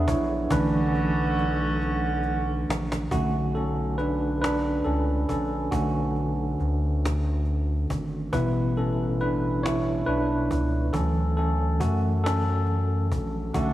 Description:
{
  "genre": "slow six-eight R&B",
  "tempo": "46 BPM (dotted quarters)",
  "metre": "6/8",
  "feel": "straight",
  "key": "B minor",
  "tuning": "A4 = 440 Hz",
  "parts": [
    { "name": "tine electric piano", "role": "accompaniment", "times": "0.0-13.7 s", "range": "B2 to F#5", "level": "-25 LUFS", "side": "equal", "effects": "medium stereo tremolo" },
    { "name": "clear horn section", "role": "stabs", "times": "0.0-2.6, 13.5-13.7 s", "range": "D3 to A4", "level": "-30 LUFS", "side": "right 2 dB", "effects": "tape echo, slapback echo" },
    { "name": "round analog bass", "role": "bass", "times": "0.0-13.7 s", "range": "G#1 to F#2", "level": "-27 LUFS", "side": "equal", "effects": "none" },
    { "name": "cajon", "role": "drums", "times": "0.1-13.7 s", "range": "none", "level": "-33 LUFS", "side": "equal", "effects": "none" }
  ],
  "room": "moderate lush hall reverb, RT60 2.5 s",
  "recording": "big arena sound, small room ambience",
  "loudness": "-23 LUFS",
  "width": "side -14 dB against mid",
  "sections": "0.0-3.1 A section; 3.1-13.7 B section",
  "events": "tine electric piano solo 0.0-3.1, 3.1-13.7; drum fill 0.5-3.1",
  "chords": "0.0 E9; 0.5 Bm11; 3.1 Bm7; 8.3 A9; 10.9 Dmaj9",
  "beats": "| 0.51 1.81 | 3.11 4.42 | 5.72 7.03 | 8.33 9.63 | 10.94 12.24 | 13.55"
}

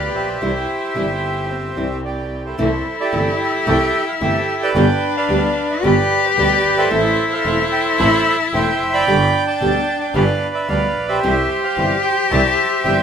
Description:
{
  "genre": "tango",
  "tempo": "111 BPM",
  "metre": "4/4",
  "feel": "rubato",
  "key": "C major",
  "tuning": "A4 = 440 Hz",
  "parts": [
    { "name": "bandoneon", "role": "melody", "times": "0.0-13.0 s", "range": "E4 to B5", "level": "-19 LUFS", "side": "right 3 dB", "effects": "none" },
    { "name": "rich cello", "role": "second line", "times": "0.0-13.0 s", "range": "C4 to G4", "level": "-20 LUFS", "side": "left 6 dB", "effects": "none" },
    { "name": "muted studio string section", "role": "stabs", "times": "0.0-13.0 s", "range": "B3 to A4", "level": "-30 LUFS", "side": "left 1 dB", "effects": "none" },
    { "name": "bright double bass", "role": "bass", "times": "0.0-13.0 s", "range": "E1 to D2", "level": "-23 LUFS", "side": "right 1 dB", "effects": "none" },
    { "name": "nylon-string guitar", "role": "accompaniment", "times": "0.4-13.0 s", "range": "B2 to G4", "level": "-21 LUFS", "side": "equal", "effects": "none" }
  ],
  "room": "moderate spring reverb, RT60 1.5 s",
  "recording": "minimal, uncompressed stereo recording",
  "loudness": "-15 LUFS",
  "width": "side -8 dB against mid",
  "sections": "0.0-2.6 A section; 2.6-13.0 A section",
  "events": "none",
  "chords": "0.4 C; 2.6 C6; 4.8 G; 6.9 Am; 9.1 G; 11.2 C",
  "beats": "| 0.42 0.96 1.50 2.05 | 2.59 3.13 3.68 4.22 | 4.76 5.30 5.84 6.38 | 6.92 7.46 7.99 8.53 | 9.07 9.61 10.15 10.69 | 11.23 11.77 12.31 12.85"
}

